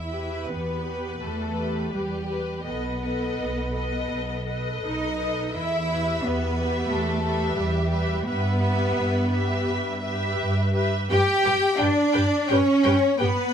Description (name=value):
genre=classical, slow romantic movement for string orchestra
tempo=72-91 BPM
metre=4/4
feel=rubato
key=E minor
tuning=A4 = 440 Hz
part: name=warm symphonic violin section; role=second line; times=0.0-13.5 s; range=G4 to G5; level=-30 LUFS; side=left 2 dB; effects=none
part: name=dark chamber double bass section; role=bass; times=0.0-13.3 s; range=B1 to G2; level=-28 LUFS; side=right 1 dB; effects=none
part: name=rich symphonic cello section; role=bass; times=0.0-13.5 s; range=G3 to G4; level=-26 LUFS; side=right 1 dB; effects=none
part: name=rich symphonic violin section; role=melody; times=0.1-13.3 s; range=B4 to G5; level=-32 LUFS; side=left 2 dB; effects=none
part: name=warm symphonic viola section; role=accompaniment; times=0.1-13.3 s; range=G4 to B4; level=-31 LUFS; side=left 1 dB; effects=none
room=light reverb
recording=close, detailed microphones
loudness=-22 LUFS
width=side -8 dB against mid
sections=0.0-13.5 A section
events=none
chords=0.0 Em; 2.7 B7; 5.5 Em; 8.3 Em/G; 11.1 G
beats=0.49 1.21 1.93 | 2.66 3.38 4.11 4.84 | 5.54 6.24 6.90 7.57 | 8.26 8.95 9.65 10.38 | 11.10 11.79 12.50 13.21